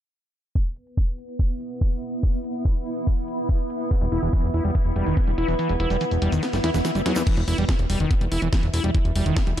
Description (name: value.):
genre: psychedelic trance.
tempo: 143 BPM.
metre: 4/4.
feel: straight.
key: unclear.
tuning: A4 = 438 Hz.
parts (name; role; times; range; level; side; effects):
overtone-sweeping drone; sustained chords; 1.2-9.6 s; E3 to B4; -31 LUFS; equal; chorus, built-in reverb, vintage 12-bit sampler grit, sidechain pumping.
drum and bass drum kit; drums; 0.6-9.6 s; crash cymbal, hi-hat, snare drum; -30 LUFS; left 1 dB; small room ambience.
electronic kick drum; drums; 0.6-9.4 s; none; -21 LUFS; equal; small room ambience.
granular cloud pad; texture; 1.3-7.3 s; B3 to B5; -32 LUFS; equal; built-in reverb, sidechain pumping.
screaming distorted acid line; riff; 3.9-9.6 s; D#3 to E4; -27 LUFS; equal; distortion, chorus, auto-pan, sidechain pumping, dub echo.
egg shaker; percussion; 3.9-7.2 s; none; -42 LUFS; right 2 dB; none.
fat analog bass; bass; 4.0-9.6 s; E1 to E2; -24 LUFS; equal; none.
swell; sound effects; 6.5-7.3 s; none; -32 LUFS; right 1 dB; none.
room: little or no reverb.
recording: dark, warm production, low-pass filter.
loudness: -21 LUFS.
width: side -11 dB against mid.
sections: 0.6-7.3 A section; 7.3-9.6 B section.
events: filter sweep on synth drone 0.6-7.3; filter sweep 0.6-7.3; kick drops out 5.6-7.3; drum fill 6.4-7.3; swell 6.5-7.3.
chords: 0.6 E5.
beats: | 0.55 0.97 1.39 1.81 | 2.23 2.65 3.07 3.49 | 3.91 4.33 4.75 5.17 | 5.59 6.01 6.43 6.85 | 7.27 7.69 8.11 8.53 | 8.95 9.37.